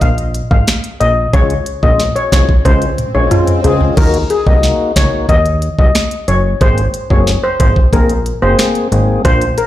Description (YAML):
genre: dancehall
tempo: 91 BPM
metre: 4/4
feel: straight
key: Eb dorian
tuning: A4 = 440 Hz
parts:
  - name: steel pan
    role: melody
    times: 0.0-9.7 s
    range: F4 to F5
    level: -16 LUFS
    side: left 2 dB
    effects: none
  - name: plucky analog bass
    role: bass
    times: 0.0-9.5 s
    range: Gb1 to Eb2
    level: -14 LUFS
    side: equal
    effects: none
  - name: afro-pop drum kit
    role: drums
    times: 0.0-9.7 s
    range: crash cymbal, finger snaps, hi-hat, kick drum, snare drum, toms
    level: -13 LUFS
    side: equal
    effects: none
  - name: tonewheel organ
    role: accompaniment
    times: 1.3-9.5 s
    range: Ab3 to Ab4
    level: -19 LUFS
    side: left 3 dB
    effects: slow rotary speaker
  - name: swell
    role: sound effects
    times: 2.3-4.0 s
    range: none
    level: -25 LUFS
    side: left 1 dB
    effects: none
room: light reverb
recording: played on a big sound system in a bare room, large studio reverb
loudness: -10 LUFS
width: side -13 dB against mid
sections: 0.0-4.0 A section; 4.0-9.7 B section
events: swell 2.3-4.0; drum fill 2.7-4.0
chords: 0.0 N.C.; 1.3 Db; 4.0 Ebm; 6.6 Abadd9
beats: 0.02 0.68 | 1.34 2.00 2.65 3.31 | 3.97 4.63 5.29 5.95 | 6.61 7.27 7.93 8.59 | 9.25